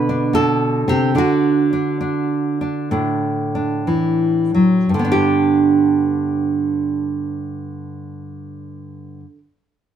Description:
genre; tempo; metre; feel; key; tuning
solo jazz; 56-76 BPM; 4/4; swing 67% on 8ths; G major; A4 = 440 Hz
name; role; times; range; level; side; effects
nylon-string guitar; solo; 0.0-9.4 s; G2 to B4; -16 LUFS; right 1 dB; none
room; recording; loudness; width
moderate stone room reverb, RT60 1.1 s; band playing live in one room; -15 LUFS; side -9 dB against mid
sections
0.0-4.9 A section; 4.9-9.2 B section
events
slowing down 0.0-4.9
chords
0.0 Bm7; 1.1 D; 4.9 G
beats
0.33 | 1.15 2.00 2.90 3.86 | 4.89 5.96 7.03 8.10

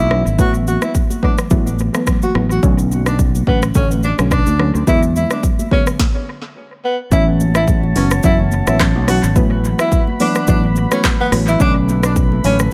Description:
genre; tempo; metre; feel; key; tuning
afrobeats; 107 BPM; 4/4; swing 55% on 16ths; A major; A4 = 442 Hz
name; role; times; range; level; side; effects
breathy tenor saxophone; melody; 0.0-12.6 s; B3 to F#4; -23 LUFS; equal; analog delay
fingered electric bass; bass; 0.0-12.7 s; F#1 to E2; -19 LUFS; equal; none
soft round pluck; accompaniment; 0.1-12.6 s; D3 to C#4; -22 LUFS; equal; chorus, analog delay
afro-pop drum kit; drums; 0.1-12.7 s; handclaps, hi-hat, kick drum, rim click, shaker, snare drum; -20 LUFS; equal; analog delay
congas; percussion; 0.1-12.6 s; none; -29 LUFS; equal; none
warm woodwind section; sustained chords; 7.1-12.7 s; F#4 to B5; -29 LUFS; equal; none
room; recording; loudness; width
light reverb, small room reverb; echo-heavy mix; -15 LUFS; mono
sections
0.0-7.1 A section; 7.1-12.7 B section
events
stop 6.0-7.1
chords
0.4 D69/A (rootless); 2.6 Bm7; 4.9 E7; 7.1 A6; 9.4 Asus2; 11.6 Bm7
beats
| 0.39 0.95 1.51 2.07 | 2.63 3.19 3.75 4.31 | 4.87 5.43 5.99 6.55 | 7.12 7.68 8.24 8.80 | 9.36 9.92 10.48 11.04 | 11.60 12.16 12.72

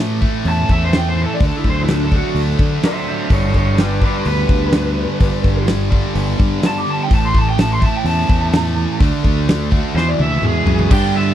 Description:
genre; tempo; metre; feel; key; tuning
classic rock; 126 BPM; 4/4; straight; A mixolydian; A4 = 440 Hz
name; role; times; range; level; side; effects
biting overdriven guitar; riff; 0.0-11.3 s; G2 to F#4; -22 LUFS; right 10 dB; none
overdriven electric guitar; riff; 0.0-11.3 s; E2 to D4; -25 LUFS; left 13 dB; none
growling fingered electric bass; bass; 0.0-11.3 s; G1 to D3; -19 LUFS; equal; overdrive
big rock drum kit; drums; 0.2-11.0 s; crash cymbal, hi-hat, kick drum, snare drum, toms; -17 LUFS; equal; none
lead guitar through a small cranked amp; melody; 0.5-11.3 s; D4 to D6; -22 LUFS; equal; overdrive
room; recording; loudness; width
little or no reverb; dry, close 1970s-style studio recording; -14 LUFS; side -11 dB against mid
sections
0.0-10.9 A section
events
lead electric guitar solo 0.0-10.9; drum fill 10.0-10.9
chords
0.0 A; 1.4 D; 3.3 G; 7.1 A; 9.0 D; 10.0 E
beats
0.46 0.93 | 1.41 1.88 2.36 2.83 | 3.31 3.78 4.26 4.73 | 5.21 5.68 6.16 6.63 | 7.11 7.58 8.06 8.53 | 9.01 9.48 9.96 10.43 | 10.91

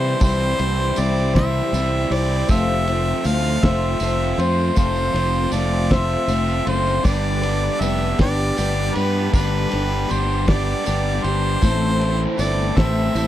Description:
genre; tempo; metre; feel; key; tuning
folk rock and heartland rock; 53 BPM (dotted quarters); 6/8; straight; unclear; A4 = 441 Hz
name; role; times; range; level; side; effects
clear harmonica; melody; 0.0-13.3 s; B4 to F5; -24 LUFS; equal; none
picked twelve-string acoustic guitar; accompaniment; 0.0-13.3 s; A2 to C5; -25 LUFS; left 3 dB; none
tonewheel organ; sustained chords; 0.0-13.3 s; E3 to D5; -34 LUFS; right 1 dB; none
overdriven electric guitar; riff; 0.0-13.3 s; F2 to A4; -25 LUFS; right 1 dB; none
fingered electric bass; bass; 0.0-13.3 s; F1 to C3; -22 LUFS; equal; none
cloth-damped thuddy drum kit; drums; 0.2-13.3 s; crash cymbal, kick drum, ride cymbal, snare drum; -19 LUFS; equal; none
tambourine; percussion; 0.2-13.3 s; none; -38 LUFS; right 7 dB; none
room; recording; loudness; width
little or no reverb; dry, close 1970s-style studio recording; -17 LUFS; side -12 dB against mid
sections
0.0-13.3 A section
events
none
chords
0.0 C; 2.5 F; 7.0 G; 11.6 Am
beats
| 0.21 1.35 | 2.49 3.63 | 4.77 5.91 | 7.05 8.19 | 9.33 10.48 | 11.62 12.76

